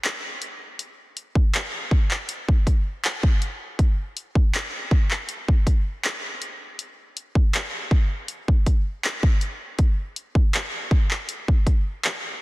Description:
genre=R&B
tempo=80 BPM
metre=4/4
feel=straight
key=none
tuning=none
part: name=house drum kit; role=drums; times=0.0-12.2 s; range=handclaps, hi-hat, kick drum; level=-20 LUFS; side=equal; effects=vintage 12-bit sampler grit
room=little or no reverb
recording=dense, heavily limited modern master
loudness=-20 LUFS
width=side -20 dB against mid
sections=0.0-12.4 A section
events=none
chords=none

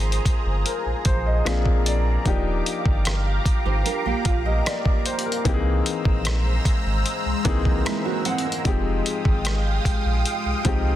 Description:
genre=contemporary R&B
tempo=75 BPM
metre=4/4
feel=straight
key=Eb major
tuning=A4 = 440 Hz
part: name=warm grand piano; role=accompaniment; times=0.0-11.0 s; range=E3 to Bb5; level=-27 LUFS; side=left 4 dB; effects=none
part: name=lush unison pad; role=sustained chords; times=0.0-11.0 s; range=G#3 to E6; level=-29 LUFS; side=right 1 dB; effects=chorus, phaser
part: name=saturated sub bass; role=bass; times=0.0-11.0 s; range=Eb1 to C2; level=-24 LUFS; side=equal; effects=none
part: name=dusty soul sampler-style drum kit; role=drums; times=0.1-10.8 s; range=hi-hat, kick drum, rim click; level=-23 LUFS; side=equal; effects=soft clipping on snare
part: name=nylon-string guitar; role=arpeggios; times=3.7-8.8 s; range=Gb3 to C5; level=-29 LUFS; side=right 11 dB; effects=tape echo
room=digital ambience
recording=dense, heavily limited modern master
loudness=-20 LUFS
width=side -12 dB against mid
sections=0.0-11.0 A section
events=grand piano fill 1.1-2.3, 7.5-8.7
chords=0.0 Bb9sus4; 1.5 Bb7; 2.3 Ebmaj9; 5.5 C7alt; 8.7 Fm9

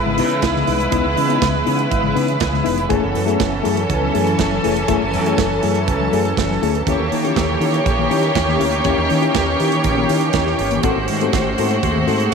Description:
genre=disco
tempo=121 BPM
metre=4/4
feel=straight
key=C# minor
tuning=A4 = 444 Hz
part: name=clear studio string section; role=second line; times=0.0-12.3 s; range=E3 to C#5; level=-20 LUFS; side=right 1 dB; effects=slapback echo
part: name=shimmering ambient pad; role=sustained chords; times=0.0-12.3 s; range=C#3 to G#5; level=-23 LUFS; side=right 1 dB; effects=chorus, built-in reverb
part: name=modern bright fingered electric bass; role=bass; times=0.0-12.3 s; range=E#1 to D#3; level=-22 LUFS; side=right 2 dB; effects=none
part: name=bright reed electric piano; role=accompaniment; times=0.1-12.2 s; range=G#2 to A4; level=-22 LUFS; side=left 12 dB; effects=none
part: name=modern studio drum kit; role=drums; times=0.2-12.3 s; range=hi-hat, kick drum, snare drum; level=-24 LUFS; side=right 6 dB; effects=none
room=light reverb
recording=1960s-style stereo with parts hard left and right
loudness=-15 LUFS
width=side -5 dB against mid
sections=0.0-12.3 A section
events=none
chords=0.0 C#m7; 2.9 F#m9; 6.9 D#7b9; 10.8 G#7b9

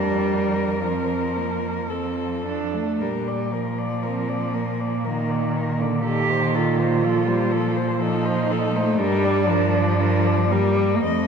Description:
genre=classical, lyrical piece for cello ensemble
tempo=54-62 BPM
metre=3/4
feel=rubato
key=Bb major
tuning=A4 = 440 Hz
part: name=muted cello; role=melody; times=0.0-11.3 s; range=A4 to Eb5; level=-28 LUFS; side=left 5 dB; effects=none
part: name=muted cello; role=second line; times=0.0-11.3 s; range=Bb3 to G4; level=-26 LUFS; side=right 5 dB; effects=none
part: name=muted cello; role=accompaniment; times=0.0-11.3 s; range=D3 to Bb3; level=-24 LUFS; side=left 1 dB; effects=none
part: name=muted cello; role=bass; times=0.0-11.3 s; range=F2 to Bb2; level=-25 LUFS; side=right 2 dB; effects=none
room=wet scoring stage reverb, RT60 1.9 s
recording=minimal, uncompressed stereo recording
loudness=-20 LUFS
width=side -6 dB against mid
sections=0.0-11.3 A section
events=none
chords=0.0 Bb/F; 1.9 F; 3.0 Bb; 6.0 F/Bb; 9.0 Gm

